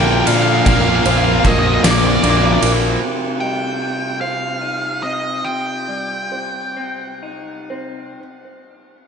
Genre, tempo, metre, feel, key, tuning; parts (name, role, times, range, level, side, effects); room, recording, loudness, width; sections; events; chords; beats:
post-rock; 40-51 BPM (dotted quarters); 6/8; straight; C minor; A4 = 440 Hz
octave-fuzz lead guitar; melody; 0.0-7.2 s; D5 to G5; -21 LUFS; equal; distortion, tape echo
pedal steel guitar; sustained chords; 0.0-8.2 s; C3 to G5; -32 LUFS; right 1 dB; wide subtle chorus
electric guitar through a small old amp; arpeggios; 0.0-8.2 s; Bb2 to Eb4; -27 LUFS; left 3 dB; slapback echo, tape echo
felt-muted upright piano; arpeggios; 0.0-8.2 s; Bb4 to Eb5; -30 LUFS; right 4 dB; slapback echo, tape echo
distorted electric guitar; riff; 0.0-3.0 s; Bb2 to Bb3; -20 LUFS; left 10 dB; distortion
tight distorted guitar; riff; 0.0-3.0 s; Bb2 to Bb3; -22 LUFS; right 11 dB; distortion, slapback echo
fuzz fingered electric bass; bass; 0.0-3.0 s; Bb1 to Bb2; -19 LUFS; equal; overdrive
oversized low-tuned drum kit; drums; 0.3-2.8 s; kick drum, ride cymbal, snare drum; -19 LUFS; right 1 dB
moderate lush hall reverb, RT60 1.9 s, small room ambience; big arena sound, nothing above 11.0 kHz; -14 LUFS; side -6 dB against mid
0.0-3.0 A section; 3.0-8.2 B section
slowing down 3.0-8.2
0.0 Bb; 3.0 Cm
| 0.66 1.84 | 3.02 4.21 | 5.45 6.76